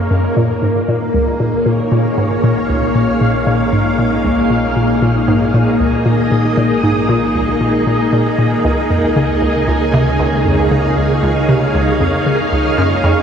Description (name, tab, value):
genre	ambient, sequencer-driven space music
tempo	116 BPM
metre	4/4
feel	straight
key	Bb minor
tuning	A4 = 439 Hz
part	string machine, full ensemble	sustained chords	0.0-13.2 s	Bb3 to F5	-14 LUFS	equal	ensemble chorus
part	hollow square pluck	riff	0.0-13.2 s	Db2 to Db3	-16 LUFS	equal	chorus, tape echo
part	fat analog bass	bass	0.0-13.2 s	Gb1 to Db2	-23 LUFS	equal	none
room	wet cathedral reverb, RT60 6.7 s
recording	in a vast, echoing space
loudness	-12 LUFS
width	side -7 dB against mid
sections	0.0-13.2 A section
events	fade-in on analog synth bass 0.0-13.2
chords	0.4 Bbm7; 8.6 Db6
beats	| 0.37 0.89 1.40 1.92 | 2.44 2.95 3.47 3.99 | 4.51 5.02 5.54 6.06 | 6.58 7.09 7.61 8.13 | 8.64 9.16 9.68 10.20 | 10.71 11.23 11.75 12.27 | 12.78